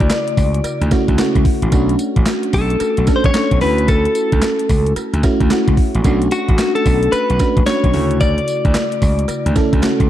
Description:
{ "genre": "R&B, new jack swing", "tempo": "111 BPM", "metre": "4/4", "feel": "swing 64% on 16ths", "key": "unclear", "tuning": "A4 = 440 Hz", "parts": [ { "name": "direct-recorded clean electric guitar", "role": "melody", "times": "0.0-9.8 s", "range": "F#4 to D5", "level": "-19 LUFS", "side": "left 2 dB", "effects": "none" }, { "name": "mellow FM electric piano", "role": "accompaniment", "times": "0.0-10.1 s", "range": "C#3 to A4", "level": "-19 LUFS", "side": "right 1 dB", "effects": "chorus" }, { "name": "gritty slap bass", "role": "bass", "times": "0.0-10.1 s", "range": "A1 to D2", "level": "-18 LUFS", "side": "equal", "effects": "overdrive" }, { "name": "clean 12-bit digital drum machine", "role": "drums", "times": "0.0-10.1 s", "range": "handclaps, hi-hat, kick drum, snare drum, tambourine", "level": "-17 LUFS", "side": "equal", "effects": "overdrive" }, { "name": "cowbell", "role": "percussion", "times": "0.1-10.0 s", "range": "none", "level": "-34 LUFS", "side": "right 6 dB", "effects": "none" } ], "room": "light reverb, digital ambience", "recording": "dark, warm production", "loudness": "-13 LUFS", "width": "side -12 dB against mid", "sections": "0.0-10.1 A section", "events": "none", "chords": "0.0 Dmaj9; 1.7 Bm9; 3.6 Dmaj9; 6.0 Bm9; 7.9 Dmaj9" }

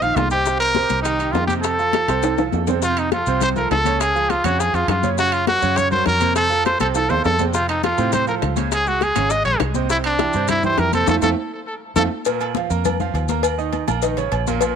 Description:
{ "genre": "latin, salsa", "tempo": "204 BPM", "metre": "4/4", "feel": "straight", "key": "unclear", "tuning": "A4 = 440 Hz", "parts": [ { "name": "bright trumpet", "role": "melody", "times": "0.0-12.0 s", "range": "D4 to F5", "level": "-19 LUFS", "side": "equal", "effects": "tape echo" }, { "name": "bright concert grand piano", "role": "accompaniment", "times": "0.0-14.8 s", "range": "Bb2 to Bb5", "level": "-24 LUFS", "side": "right 12 dB", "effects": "none" }, { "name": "fingered electric bass", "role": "bass", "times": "0.0-14.8 s", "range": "Ab1 to A2", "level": "-24 LUFS", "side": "left 1 dB", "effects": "none" }, { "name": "bongos and cowbell", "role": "percussion", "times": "0.0-14.8 s", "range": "none", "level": "-25 LUFS", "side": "left 14 dB", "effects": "none" }, { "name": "congas", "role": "percussion", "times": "0.0-14.8 s", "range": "none", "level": "-28 LUFS", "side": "left 14 dB", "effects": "none" }, { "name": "maracas", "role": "percussion", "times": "0.0-14.8 s", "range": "none", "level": "-34 LUFS", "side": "left 17 dB", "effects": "none" }, { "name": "timbales and agogo bells", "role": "percussion", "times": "0.0-14.8 s", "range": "none", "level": "-28 LUFS", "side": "right 13 dB", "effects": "none" } ], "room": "light reverb, small room ambience", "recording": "1960s-style stereo with parts hard left and right", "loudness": "-17 LUFS", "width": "side -7 dB against mid", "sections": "0.0-2.8 A section; 2.8-12.3 B section; 12.3-14.8 C section", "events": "drum fill 1.9-2.8, 6.9-7.5, 11.4-12.3; band accent 11.1-12.3", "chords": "0.5 Cm7; 1.6 F; 4.0 Db; 5.2 Gb; 6.4 F; 8.7 Db5; 9.9 C; 11.1 F; 12.3 Bb5; 13.4 Eb5" }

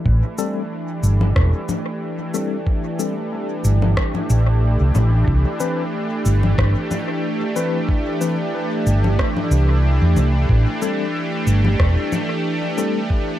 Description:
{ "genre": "ambient dub", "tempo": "92 BPM", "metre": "4/4", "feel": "swing 54% on 16ths", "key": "A minor", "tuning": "A4 = 445 Hz", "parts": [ { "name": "warm analog pad", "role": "sustained chords", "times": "0.0-13.4 s", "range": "E3 to G4", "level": "-23 LUFS", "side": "right 1 dB", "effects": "chorus" }, { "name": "hollow-body short-scale fingered electric bass", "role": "bass", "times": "0.1-12.0 s", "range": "E1 to E2", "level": "-15 LUFS", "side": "equal", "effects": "none" }, { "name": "electronic kick drum", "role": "drums", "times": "0.1-13.2 s", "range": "none", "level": "-20 LUFS", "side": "equal", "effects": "none" }, { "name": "tine electric piano", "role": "stabs", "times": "0.4-13.0 s", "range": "E3 to B4", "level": "-27 LUFS", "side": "left 4 dB", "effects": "fast stereo tremolo, dub echo" }, { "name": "electronic shaker, congas and rim click", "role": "drums", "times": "0.4-12.9 s", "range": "none", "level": "-27 LUFS", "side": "left 2 dB", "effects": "dub echo" } ], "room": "light reverb, digital ambience", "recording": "echo-heavy mix", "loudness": "-17 LUFS", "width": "side -13 dB against mid", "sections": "0.1-13.4 A section", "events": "none", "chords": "0.1 Am7; 5.3 C; 10.5 Am7" }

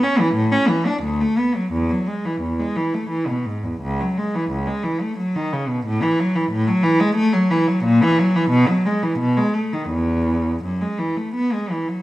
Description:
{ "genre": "classical, baroque-style suite movement for unaccompanied cello", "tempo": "88 BPM", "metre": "3/4", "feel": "uneven beats, rubato", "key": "E major from 3.8 s", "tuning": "A4 = 440 Hz", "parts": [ { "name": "rich cello", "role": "solo", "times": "0.0-12.0 s", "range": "C#2 to D4", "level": "-18 LUFS", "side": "equal", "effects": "none" } ], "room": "wet stone room reverb, RT60 1.0 s", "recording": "heard from further back in the room", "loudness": "-18 LUFS", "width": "side -16 dB against mid", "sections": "0.0-12.0 A section", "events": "none", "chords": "none" }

